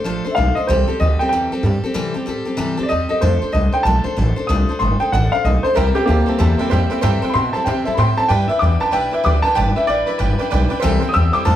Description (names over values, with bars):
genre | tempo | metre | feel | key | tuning
rockabilly | 189 BPM | 4/4 | swing 63% on 8ths | C major | A4 = 441 Hz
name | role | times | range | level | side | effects
picked steel-string acoustic guitar | accompaniment | 0.0-11.6 s | C3 to C5 | -23 LUFS | left 2 dB | none
upright bass | bass | 0.1-11.6 s | G1 to C3 | -18 LUFS | equal | none
warm upright piano | melody | 0.3-11.6 s | Bb3 to E6 | -18 LUFS | equal | none
tack piano | accompaniment | 5.7-11.6 s | B4 to A5 | -24 LUFS | right 4 dB | none
room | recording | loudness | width
light reverb | band playing live in one room | -15 LUFS | side -11 dB against mid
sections
0.0-11.6 A section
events
none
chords
0.0 F6; 0.7 C6; 3.2 F6; 5.8 C6; 8.3 G6; 10.8 C6